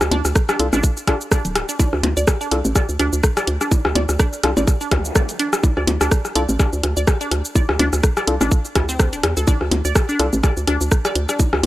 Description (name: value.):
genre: minimal techno.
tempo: 125 BPM.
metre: 4/4.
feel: swing 56% on 16ths.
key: D minor.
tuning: A4 = 436 Hz.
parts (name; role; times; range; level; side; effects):
hollow knocking FM bass; bass; 0.0-11.7 s; D1 to E2; -20 LUFS; equal; sidechain pumping.
garage drum kit; drums; 0.0-11.7 s; cabasa, hi-hat, rim click; -23 LUFS; equal; none.
electronic rim click and percussion blips; percussion; 0.0-11.7 s; none; -23 LUFS; left 2 dB; analog delay.
resonant blip pluck; riff; 0.1-11.3 s; C4 to D5; -26 LUFS; right 1 dB; phaser, cassette tape, sidechain pumping, tape echo.
electronic kick drum; drums; 0.4-11.5 s; none; -17 LUFS; equal; none.
percussive organ stab; stabs; 0.6-10.3 s; D4 to A4; -25 LUFS; left 2 dB; chorus, analog delay.
zap; sound effects; 4.9-5.0 s; none; -30 LUFS; equal; none.
room: little or no reverb.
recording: dry, gritty hardware recording.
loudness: -16 LUFS.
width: side -16 dB against mid.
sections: 0.0-11.7 A section.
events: none.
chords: 0.0 D5.